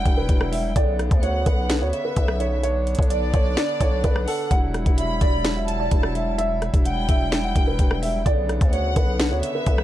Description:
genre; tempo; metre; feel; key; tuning
hip hop, trap; 128 BPM; 4/4; half-time; E dorian; A4 = 440 Hz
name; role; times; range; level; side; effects
dark grand piano; melody; 0.0-9.8 s; A4 to F#5; -27 LUFS; right 2 dB; low-pass filter, ping-pong delay
warm studio violin section; second line; 0.0-9.8 s; D5 to B5; -31 LUFS; equal; ping-pong delay
pedal harmonium; sustained chords; 0.0-9.8 s; C#3 to E4; -32 LUFS; equal; none
growling 808-style bass; bass; 0.0-9.8 s; E1 to D2; -25 LUFS; equal; none
trap drum kit; drums; 0.1-9.8 s; hi-hat, kick drum, rim click, snare drum; -21 LUFS; equal; vintage 12-bit sampler grit
room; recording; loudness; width
little or no reverb; dark, warm production; -19 LUFS; side -13 dB against mid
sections
0.0-9.8 A section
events
none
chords
0.0 Emadd9; 0.8 Bmadd9; 4.5 Emadd9; 8.3 Bmadd9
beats
0.29 | 0.76 1.23 1.70 2.17 | 2.63 3.10 3.57 4.04 | 4.51 4.98 5.45 5.92 | 6.38 6.85 7.32 7.79 | 8.26 8.73 9.20 9.67

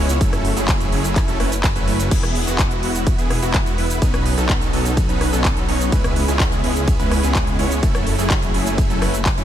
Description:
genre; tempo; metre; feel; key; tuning
EDM, festival progressive house; 126 BPM; 4/4; straight; unclear; A4 = 440 Hz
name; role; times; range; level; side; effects
supersaw chords; riff; 0.0-9.4 s; F#3 to C#5; -22 LUFS; right 1 dB; sidechain pumping, dub echo
wide detuned saw bass; bass; 0.0-9.4 s; E1 to C#2; -22 LUFS; equal; chorus, sidechain pumping
big-room dance drum kit; drums; 0.1-9.4 s; crash cymbal, handclaps, hi-hat, ride cymbal, rim click, shaker; -24 LUFS; equal; none
electronic kick drum; drums; 0.2-9.4 s; none; -20 LUFS; equal; none
room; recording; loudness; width
digital ambience; none; -16 LUFS; side -10 dB against mid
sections
0.0-9.4 A section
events
none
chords
0.2 F#m7; 2.1 E; 4.0 Badd9; 5.9 C#m7; 7.8 F#m7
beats
| 0.21 0.69 1.16 1.64 | 2.11 2.59 3.07 3.54 | 4.02 4.50 4.97 5.45 | 5.92 6.40 6.88 7.35 | 7.83 8.30 8.78 9.26

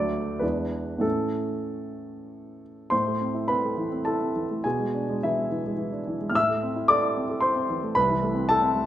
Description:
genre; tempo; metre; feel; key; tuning
classical, romantic character piece for solo piano; 94-112 BPM; 3/4; rubato; A minor; A4 = 440 Hz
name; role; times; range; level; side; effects
warm grand piano; solo; 0.0-8.9 s; C2 to F6; -23 LUFS; equal; none
room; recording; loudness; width
moderate recital hall reverb, RT60 1.4 s; none; -23 LUFS; side -12 dB against mid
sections
0.0-2.9 A section; 2.9-8.9 B section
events
none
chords
0.4 E7; 1.0 A; 2.9 Am; 4.6 E7/B; 6.3 Am; 8.0 Am/C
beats
0.42 | 1.04 1.67 2.30 | 2.92 3.50 4.05 | 4.64 5.22 5.79 | 6.34 6.88 7.42 | 7.96 8.51

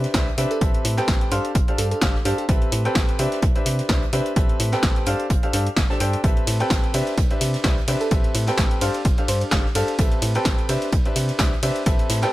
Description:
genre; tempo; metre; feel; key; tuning
piano house; 128 BPM; 4/4; swing 56% on 16ths; unclear; A4 = 440 Hz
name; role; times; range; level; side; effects
bright upright piano; riff; 0.0-12.3 s; C4 to A5; -25 LUFS; equal; sidechain pumping, tape echo
organ-like FM bass; bass; 0.0-12.3 s; G1 to C3; -25 LUFS; equal; sidechain pumping
punchy analog drum machine; drums; 0.0-12.3 s; hi-hat, ride cymbal, snare drum; -27 LUFS; equal; none
unplugged drum kit; drums; 0.0-12.3 s; hi-hat, snare drum; -36 LUFS; right 3 dB; none
electronic kick drum; drums; 0.1-12.0 s; none; -21 LUFS; equal; none
bell-like FM electric piano; melody; 0.5-2.5, 8.0-10.0 s; G4 to C5; -29 LUFS; right 1 dB; chorus, cassette tape, tape echo
room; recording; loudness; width
small room ambience; none; -18 LUFS; side -16 dB against mid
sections
0.0-12.3 A section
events
none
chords
0.0 Cmaj9; 0.6 Am9; 1.3 G9sus4; 2.5 Am9; 3.2 Cmaj9; 4.4 Am9; 5.1 G9sus4; 6.2 Am9; 6.9 Cmaj9; 8.1 Am9; 8.8 G9sus4; 10.0 Am9; 10.7 Cmaj9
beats
0.14 | 0.61 1.08 1.55 2.02 | 2.49 2.96 3.43 3.90 | 4.36 4.83 5.30 5.77 | 6.24 6.71 7.18 7.64 | 8.11 8.58 9.05 9.52 | 9.99 10.46 10.93 11.39 | 11.86

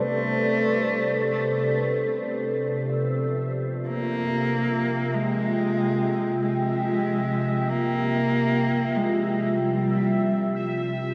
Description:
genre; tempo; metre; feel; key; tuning
dark ambient drone; free time; none; none; unclear; A4 = 440 Hz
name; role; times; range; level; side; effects
dark cello; melody; 0.0-10.9 s; G3 to Bb3; -28 LUFS; equal; tape echo
deep dark ambient pad; sustained chords; 0.0-11.1 s; F4 to G5; -29 LUFS; equal; chorus, built-in reverb
organ-like drone; drone; 0.0-11.1 s; C3; -31 LUFS; equal; ensemble chorus, built-in reverb
bubbling stepped-filter texture; texture; 2.9-11.1 s; C4 to E5; -39 LUFS; equal; chorus, built-in reverb
room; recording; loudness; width
wet huge ambient reverb, RT60 7.7 s; dark, warm production; -24 LUFS; mono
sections
0.0-11.1 A section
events
fade-out 9.4-11.1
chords
0.0 Amadd9; 2.6 Fmadd9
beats
free time

